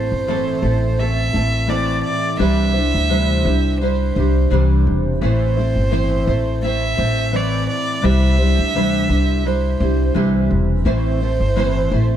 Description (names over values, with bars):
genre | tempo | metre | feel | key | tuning
pop | 85 BPM | 4/4 | swing 55% on 16ths | C major | A4 = 440 Hz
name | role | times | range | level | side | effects
warm violin | melody | 0.0-12.2 s | C5 to E5 | -23 LUFS | right 3 dB | tape echo
nylon-string guitar | accompaniment | 0.0-12.2 s | A2 to C5 | -20 LUFS | equal | double-tracked left and right
upright bass | bass | 0.0-12.2 s | E1 to D2 | -18 LUFS | equal | none
room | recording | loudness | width
studio reverb | dark, warm production | -15 LUFS | side -10 dB against mid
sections
0.0-12.2 A section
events
none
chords
0.0 Am; 2.4 Cadd9; 5.2 Am; 8.0 Cadd9; 10.9 Am